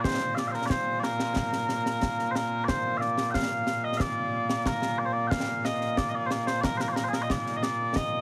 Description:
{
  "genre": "scottish traditional, Scottish pipe music",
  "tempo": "91 BPM",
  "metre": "4/4",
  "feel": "straight",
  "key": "Bb major",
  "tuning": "A4 = 440 Hz",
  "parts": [
    { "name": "mellow small bagpipes", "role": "melody", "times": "0.0-8.2 s", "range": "Bb2 to G5", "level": "-30 LUFS", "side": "equal", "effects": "none" },
    { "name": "concert snare drum and concert bass drum", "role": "drums", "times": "0.0-8.1 s", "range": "none", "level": "-33 LUFS", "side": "equal", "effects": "none" }
  ],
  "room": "light reverb",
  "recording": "heavily compressed radio sound, multiband compression",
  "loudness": "-28 LUFS",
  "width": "mono",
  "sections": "0.0-8.2 A section",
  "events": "none",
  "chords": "none",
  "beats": "| 0.05 0.71 1.37 2.03 | 2.69 3.35 4.01 4.67 | 5.33 5.98 6.64 7.30 | 7.96"
}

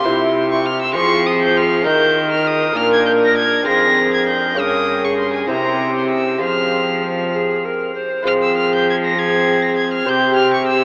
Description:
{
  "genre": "classical, renaissance-style consort dance",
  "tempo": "66 BPM (dotted quarters)",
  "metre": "6/8",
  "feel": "straight",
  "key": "F minor",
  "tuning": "A4 = 440 Hz",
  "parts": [
    { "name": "rich violin", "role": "melody", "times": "0.0-10.8 s", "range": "Ab5 to Bb6", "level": "-22 LUFS", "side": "equal", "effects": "none" },
    { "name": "tenor recorder", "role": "second line", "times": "0.0-10.8 s", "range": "G4 to C5", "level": "-22 LUFS", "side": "equal", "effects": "none" },
    { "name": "lute", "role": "accompaniment", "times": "0.0-10.8 s", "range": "F2 to G5", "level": "-24 LUFS", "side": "equal", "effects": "none" },
    { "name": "warm trombone", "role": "accompaniment", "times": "0.0-10.8 s", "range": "C4 to E4", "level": "-25 LUFS", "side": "equal", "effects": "none" },
    { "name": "rich cello", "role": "bass", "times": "0.0-10.8 s", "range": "F2 to F3", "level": "-26 LUFS", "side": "equal", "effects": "none" }
  ],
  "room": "wet huge ambient reverb, RT60 7.4 s",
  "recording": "in a vast, echoing space, AM radio sound",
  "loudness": "-17 LUFS",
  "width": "mono",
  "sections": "0.0-8.3 A section; 8.3-10.8 B section",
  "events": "none",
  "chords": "0.1 C; 1.0 Fm; 1.9 Eb; 2.8 Bb; 3.7 Fm; 4.6 Gdim; 5.5 C7; 6.4 Fm; 10.1 C",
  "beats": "0.05 | 0.96 1.86 | 2.77 3.67 | 4.58 5.50 | 6.42 7.34 | 8.27 9.17 | 10.08"
}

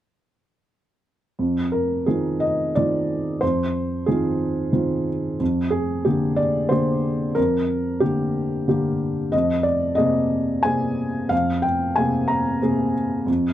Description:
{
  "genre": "neoclassical minimalist piano",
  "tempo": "92 BPM",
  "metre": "3/4",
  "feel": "rubato",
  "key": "F dorian",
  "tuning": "A4 = 440 Hz",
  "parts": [
    { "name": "felt-muted upright piano", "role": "solo", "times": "1.4-13.5 s", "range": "F2 to Bb5", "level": "-19 LUFS", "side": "equal", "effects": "none" }
  ],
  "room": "light reverb",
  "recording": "dry, close 1970s-style studio recording",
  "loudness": "-20 LUFS",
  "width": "side -12 dB against mid",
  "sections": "1.4-13.5 A section",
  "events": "none",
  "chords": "1.4 Fm7; 5.4 Gm/F; 9.3 Abadd9/F",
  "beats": "| 1.38 2.07 2.75 | 3.41 4.07 4.73 | 5.40 6.07 6.71 | 7.37 8.02 8.68 | 9.33 9.97 10.65 | 11.31 11.97 12.62 | 13.27"
}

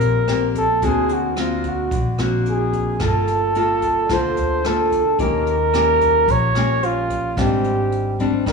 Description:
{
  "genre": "bossa nova",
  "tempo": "110 BPM",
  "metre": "4/4",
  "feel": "straight",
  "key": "G minor",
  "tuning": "A4 = 440 Hz",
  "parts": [
    { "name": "mellow flugelhorn", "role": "melody", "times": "0.0-8.5 s", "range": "F4 to Db5", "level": "-19 LUFS", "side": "right 1 dB", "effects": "none" },
    { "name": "nylon-string guitar", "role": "accompaniment", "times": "0.0-8.5 s", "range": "Ab2 to A4", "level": "-22 LUFS", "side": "left 2 dB", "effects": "none" },
    { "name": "upright bass", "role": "bass", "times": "0.0-8.5 s", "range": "G1 to Eb2", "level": "-24 LUFS", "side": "equal", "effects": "none" },
    { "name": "jazz brush drum kit", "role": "drums", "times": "0.0-8.5 s", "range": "hi-hat, kick drum, rim click", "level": "-29 LUFS", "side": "right 1 dB", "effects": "none" }
  ],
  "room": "moderate recital hall reverb, RT60 1.5 s",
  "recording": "recorded in a church or concert hall",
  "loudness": "-16 LUFS",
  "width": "side -4 dB against mid",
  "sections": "0.0-8.5 A section",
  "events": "none",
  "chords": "0.0 Eb6 (rootless); 0.8 Daug7; 3.0 Gm9; 5.2 Eb7; 7.4 Abmaj7#11",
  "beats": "0.28 | 0.83 1.38 1.92 2.47 | 3.01 3.56 4.11 4.65 | 5.20 5.74 6.29 6.83 | 7.38 7.92 8.47"
}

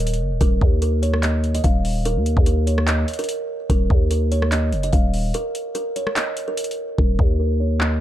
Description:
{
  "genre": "hip hop, trap",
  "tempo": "146 BPM",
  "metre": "4/4",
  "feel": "half-time",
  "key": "Eb minor",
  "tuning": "A4 = 440 Hz",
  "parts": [
    { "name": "kalimba", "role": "melody", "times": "0.0-8.0 s", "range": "Bb4 to F5", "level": "-26 LUFS", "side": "right 3 dB", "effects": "low-pass filter" },
    { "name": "growling 808-style bass", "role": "bass", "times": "0.0-8.0 s", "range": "Eb1 to Eb2", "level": "-20 LUFS", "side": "equal", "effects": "none" },
    { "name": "trap drum kit", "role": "drums", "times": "0.0-7.9 s", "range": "handclaps, hi-hat, kick drum, rim click", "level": "-20 LUFS", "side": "equal", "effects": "none" }
  ],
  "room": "little or no reverb",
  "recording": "dark, warm production",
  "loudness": "-18 LUFS",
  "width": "side -12 dB against mid",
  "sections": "0.0-7.0 A section; 7.0-8.0 B section",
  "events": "break 5.3-7.0; hi-hats muted 7.0-8.0; filter sweep on kalimba 7.0-8.0",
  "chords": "0.4 Eb5; 3.7 Bb5/Eb; 7.0 Eb5",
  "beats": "0.00 | 0.41 0.82 1.23 1.64 | 2.05 2.46 2.88 3.29 | 3.70 4.11 4.52 4.93 | 5.34 5.75 6.16 6.57 | 6.99 7.40 7.81"
}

